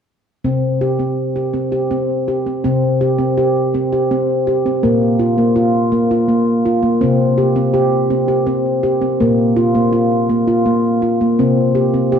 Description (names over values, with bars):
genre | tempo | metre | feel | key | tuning
world meditative, meditative tuned percussion | 82 BPM | 3/4 | straight | unclear | A4 = 439 Hz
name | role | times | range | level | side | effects
handpan | solo | 0.4-12.2 s | Bb2 to G4 | -13 LUFS | equal | ping-pong delay
room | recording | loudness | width
wet echo chamber reverb, RT60 1.5 s, studio ambience | dark, warm production | -13 LUFS | side -7 dB against mid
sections
0.4-2.6 A section; 2.6-12.2 B section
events
none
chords
0.4 C5; 4.8 Bb5; 7.0 C5; 9.2 Bb5; 11.4 C5